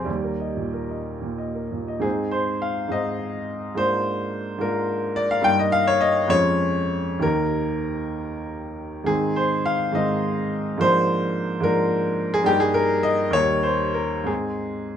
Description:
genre	classical, romantic character piece for solo piano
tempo	58-74 BPM (dotted quarters)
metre	6/8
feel	rubato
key	Ab major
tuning	A4 = 438 Hz
part	clear baby grand piano	solo	0.0-15.0 s	Eb2 to Ab5	-21 LUFS	equal	none
room	moderate large studio reverb, RT60 0.8 s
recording	dark, warm production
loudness	-20 LUFS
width	side -9 dB against mid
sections	0.0-2.0 A section; 2.0-15.0 B section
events	none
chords	0.1 Eb; 2.0 Ab; 3.8 Bb7/Ab; 5.5 Eb/G; 6.3 Db/F; 7.2 Eb; 9.1 Ab; 10.8 Bb7/Ab; 12.5 Eb/G; 13.3 Eb; 14.3 Ab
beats	| 0.07 1.06 | 2.04 2.94 | 3.80 4.63 | 5.46 6.32 | 7.24 8.17 | 9.09 9.96 | 10.83 11.65 | 12.47 13.35 | 14.28

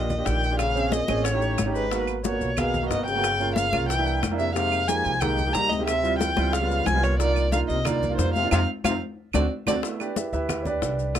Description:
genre	Afro-Cuban jazz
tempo	182 BPM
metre	4/4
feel	straight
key	unclear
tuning	A4 = 440 Hz
part	dark violin	melody	0.0-9.8 s	Cb5 to Bb5	-26 LUFS	equal	none
part	breathy trombone	second line	0.0-9.7 s	G2 to G3	-32 LUFS	left 6 dB	none
part	warm concert grand piano	accompaniment	0.0-11.2 s	G3 to E5	-28 LUFS	right 5 dB	none
part	upright bass	bass	0.0-11.2 s	G1 to F2	-27 LUFS	equal	none
part	congas	percussion	0.1-11.2 s	none	-32 LUFS	left 4 dB	none
part	maracas	percussion	0.1-11.2 s	none	-38 LUFS	left 9 dB	none
part	bongos	percussion	0.3-11.2 s	none	-35 LUFS	left 7 dB	none
part	claves	percussion	0.6-11.2 s	none	-36 LUFS	right 9 dB	none
room	light reverb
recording	close, detailed microphones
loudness	-22 LUFS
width	side -10 dB against mid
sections	0.0-9.8 A section; 9.8-11.2 B section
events	band accent 8.5-9.8; grand piano solo 9.8-11.2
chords	0.0 Ebmaj9; 0.6 Bbm7; 1.3 A7#11; 1.9 Abm9; 3.2 Gm7b5; 3.9 C7; 4.6 Fm11; 5.9 Dm11; 6.5 Db7#11; 7.2 Cm11; 8.5 F5; 9.2 D7; 9.8 G6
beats	0.26 | 0.59 0.92 1.25 1.58 | 1.92 2.25 2.58 2.91 | 3.24 3.57 3.90 4.23 | 4.56 4.89 5.22 5.55 | 5.88 6.21 6.54 6.87 | 7.20 7.53 7.86 8.19 | 8.52 8.85 9.18 9.51 | 9.84 10.17 10.49 10.82 | 11.15

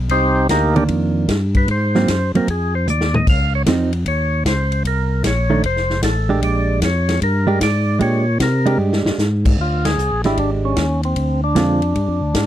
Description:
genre	soul jazz organ trio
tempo	152 BPM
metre	4/4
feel	swing 66% on 8ths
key	Bb mixolydian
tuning	A4 = 440 Hz
part	tonewheel organ	bass	0.0-12.5 s	F1 to C3	-18 LUFS	equal	overdrive, stopped rotary speaker
part	percussive tonewheel organ	melody	0.1-12.5 s	Bb3 to F5	-20 LUFS	equal	slow rotary speaker
part	vintage drum kit	drums	0.1-12.5 s	crash cymbal, hi-hat, kick drum, ride cymbal, snare drum, toms	-21 LUFS	left 1 dB	none
part	hollow-body jazz guitar	accompaniment	0.8-11.8 s	D3 to G4	-18 LUFS	right 4 dB	none
room	little or no reverb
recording	dry, close 1970s-style studio recording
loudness	-15 LUFS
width	side -12 dB against mid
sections	0.0-9.6 A section; 9.6-12.5 B section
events	tonewheel organ solo 0.0-9.6; drum fill 2.9-3.3, 8.8-9.2; band accent 9.8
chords	0.1 Cm9; 1.7 Ab9; 3.3 Dbmaj9; 4.8 Cm7; 5.6 F69; 6.4 Bb13; 11.2 Dm7b5; 12.0 G5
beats	| 0.10 0.50 0.89 1.29 | 1.69 2.08 2.48 2.87 | 3.27 3.66 4.06 4.45 | 4.85 5.24 5.64 6.03 | 6.43 6.82 7.22 7.61 | 8.01 8.40 8.80 9.19 | 9.59 9.98 10.38 10.77 | 11.17 11.56 11.96 12.35

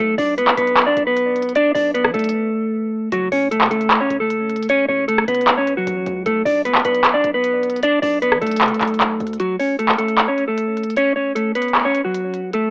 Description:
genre	hip hop, trap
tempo	153 BPM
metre	4/4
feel	half-time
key	F# minor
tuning	A4 = 440 Hz
part	mellow electric guitar	melody	0.0-12.7 s	F#3 to D5	-20 LUFS	equal	cassette tape, analog delay
part	hard-hitting 808-style bass	bass	0.0-9.4 s	F#1 to F#3	-36 LUFS	equal	none
part	trap drum kit	drums	0.2-12.6 s	handclaps, hi-hat, rim click	-20 LUFS	equal	none
room	light reverb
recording	home recording on cassette, AM radio sound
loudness	-18 LUFS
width	mono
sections	0.0-9.4 A section; 9.4-12.7 B section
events	break 2.3-3.1; kick muted 9.4-12.7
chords	0.0 Bm7; 3.1 F#m; 6.3 Bm7; 9.4 F#m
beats	0.38 0.77 1.16 | 1.55 1.95 2.34 2.73 | 3.12 3.52 3.91 4.30 | 4.69 5.08 5.48 5.87 | 6.26 6.65 7.04 7.44 | 7.83 8.22 8.61 9.01 | 9.40 9.79 10.18 10.57 | 10.97 11.36 11.75 12.14 | 12.54

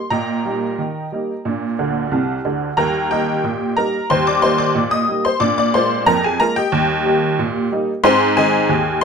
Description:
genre	ragtime piano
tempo	91 BPM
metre	2/4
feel	straight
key	Eb major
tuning	A4 = 440 Hz
part	honky-tonk upright piano	solo	0.0-9.0 s	C2 to Eb6	-15 LUFS	equal	none
room	light reverb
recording	none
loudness	-15 LUFS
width	side -6 dB against mid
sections	0.0-2.8 A section; 2.8-9.0 B section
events	honky-tonk piano fill 1.8-2.8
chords	0.1 Eb/Bb; 1.4 Bb; 2.8 Eb; 5.4 Bb7; 6.7 Eb; 8.0 Ab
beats	| 0.11 0.78 | 1.44 2.11 | 2.77 3.44 | 4.09 4.75 | 5.41 6.07 | 6.72 7.38 | 8.03 8.69

